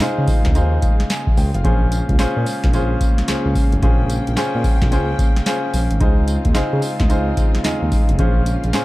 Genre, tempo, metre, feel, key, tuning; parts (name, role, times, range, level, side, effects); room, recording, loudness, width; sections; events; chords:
R&B, new jack swing; 110 BPM; 4/4; swing 63% on 16ths; Bb dorian; A4 = 440 Hz
clear concert grand piano; accompaniment; 0.0-8.8 s; Db4 to Ab5; -22 LUFS; equal
warm symphonic string section; sustained chords; 0.0-8.8 s; Db3 to G5; -27 LUFS; left 1 dB
smooth gliding synth bass; bass; 0.0-8.8 s; F1 to Db3; -20 LUFS; equal
booming analog drum machine; drums; 0.0-8.8 s; handclaps, hi-hat, kick drum, snare drum, tambourine; -17 LUFS; equal
little or no reverb; dark, warm production; -15 LUFS; side -18 dB against mid
0.0-8.8 A section
0.0 Dbmaj7; 1.6 Bbm7; 6.0 Dbmaj7; 8.2 Bbm7